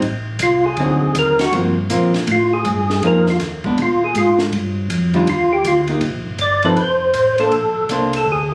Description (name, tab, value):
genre	soul jazz organ trio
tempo	160 BPM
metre	4/4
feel	swing 64% on 8ths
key	unclear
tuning	A4 = 440 Hz
part	archtop guitar, miked and amplified	accompaniment	0.0-8.1 s	D3 to C5	-21 LUFS	equal	none
part	mellow tonewheel organ	bass	0.0-8.5 s	F1 to Bb2	-24 LUFS	equal	chorus vibrato, slow rotary speaker
part	compact cocktail drum kit	drums	0.0-8.4 s	hi-hat, kick drum, ride cymbal, snare drum	-29 LUFS	equal	none
part	percussive tonewheel organ	melody	0.4-8.5 s	F4 to D5	-19 LUFS	equal	slow rotary speaker, chorus vibrato, plate reverb
room	moderate large studio reverb, RT60 1.0 s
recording	recorded on a phone in the room, club reverb, compression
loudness	-17 LUFS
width	mono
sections	0.0-8.5 A section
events	tonewheel organ solo 0.0-8.5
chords	0.0 Ammaj7; 0.8 D7b9; 1.5 Gm11; 3.0 Fm7; 3.8 Fmadd11; 4.5 Ebmaj9; 6.0 Cm7; 6.8 F; 7.5 Bbmaj9